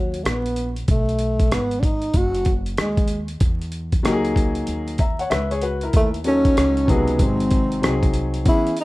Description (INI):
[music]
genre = hip hop, jazz-hop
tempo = 95 BPM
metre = 4/4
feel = swing 64% on 16ths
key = unclear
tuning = A4 = 438 Hz
[part]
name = breathy tenor saxophone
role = melody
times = 0.0-8.8 s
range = F#3 to F#4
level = -22 LUFS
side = equal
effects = slapback echo
[part]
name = upright bass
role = bass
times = 0.0-8.4 s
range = F#1 to E2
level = -26 LUFS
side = equal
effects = none
[part]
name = dusty soul sampler-style drum kit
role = drums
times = 0.1-8.8 s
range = hi-hat, kick drum, rim click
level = -21 LUFS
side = equal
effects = none
[part]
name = warm grand piano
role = accompaniment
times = 4.0-8.7 s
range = B#2 to A#5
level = -23 LUFS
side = left 2 dB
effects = none
[sound]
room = studio ambience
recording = rough home demo mix, vinyl crackle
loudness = -18 LUFS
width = side -19 dB against mid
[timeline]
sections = 0.0-8.8 A section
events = none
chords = 0.0 G#m9 (rootless); 0.9 B6; 3.4 Emaj9#11; 5.9 D#m7b5; 7.2 G#7